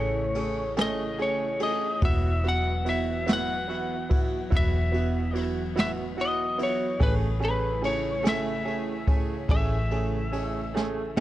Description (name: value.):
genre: six-eight pop ballad.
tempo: 48 BPM (dotted quarters).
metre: 6/8.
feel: straight.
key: unclear.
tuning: A4 = 440 Hz.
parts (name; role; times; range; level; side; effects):
lightly driven lead guitar; melody; 0.0-11.1 s; B4 to F#5; -30 LUFS; left 2 dB; tape echo.
warm concert grand piano; accompaniment; 0.0-11.2 s; A3 to G#4; -32 LUFS; right 4 dB; none.
airy breathy pad; sustained chords; 0.0-11.2 s; C#3 to G#4; -36 LUFS; right 1 dB; chorus.
direct-recorded clean electric guitar; arpeggios; 0.0-11.2 s; E3 to G#4; -40 LUFS; left 4 dB; none.
vintage muted fingered electric bass; bass; 0.0-11.2 s; E1 to A1; -30 LUFS; equal; none.
jazz brush drum kit; drums; 0.3-11.2 s; kick drum, ride cymbal, snare drum, toms; -29 LUFS; equal; vintage 12-bit sampler grit.
room: light reverb, small room reverb.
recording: none.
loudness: -24 LUFS.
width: side -14 dB against mid.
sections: 0.0-11.2 A section.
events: drum fill 10.7-11.2.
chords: 0.0 Amaj7; 2.0 Esus2; 7.0 Amaj7.